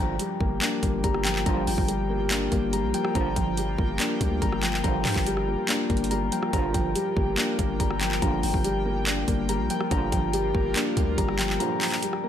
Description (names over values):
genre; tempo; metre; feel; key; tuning
hip hop, trap; 142 BPM; 4/4; half-time; G minor; A4 = 439 Hz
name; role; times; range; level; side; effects
felt-muted upright piano; accompaniment; 0.0-12.3 s; G2 to D4; -30 LUFS; right 4 dB; low-pass filter
airy breathy pad; sustained chords; 0.0-12.3 s; F4 to G5; -36 LUFS; right 2 dB; chorus
mellow tine electric piano; arpeggios; 0.0-12.3 s; G3 to Bb5; -29 LUFS; left 8 dB; low-pass filter, ping-pong delay
dark brass ensemble; stabs; 0.0-12.0 s; Bb2 to F3; -33 LUFS; right 9 dB; none
long sustained 808-style bass; bass; 0.0-11.6 s; G1 to G2; -30 LUFS; equal; none
trap drum kit; drums; 0.2-12.2 s; handclaps, hi-hat, kick drum, rim click; -27 LUFS; equal; none
room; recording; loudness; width
light reverb; none; -23 LUFS; side -9 dB against mid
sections
0.0-12.3 A section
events
kick muted 11.6-12.3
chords
0.0 Gm7